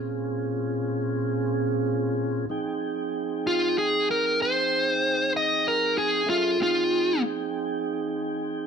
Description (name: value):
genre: blues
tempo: 64 BPM (dotted quarters)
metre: 12/8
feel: straight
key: F minor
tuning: A4 = 440 Hz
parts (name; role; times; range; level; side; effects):
- mellow tonewheel organ; sustained chords; 0.0-8.7 s; Bb2 to G5; -27 LUFS; right 2 dB; slow rotary speaker
- dark smooth lead guitar; melody; 3.5-7.2 s; F4 to Eb5; -22 LUFS; left 1 dB; overdrive
room: moderate stone room reverb, RT60 0.9 s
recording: band playing live in one room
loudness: -23 LUFS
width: side -6 dB against mid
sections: 0.0-8.7 A section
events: lead electric guitar solo 0.0-8.7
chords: 0.0 Bbm9; 2.5 Fm9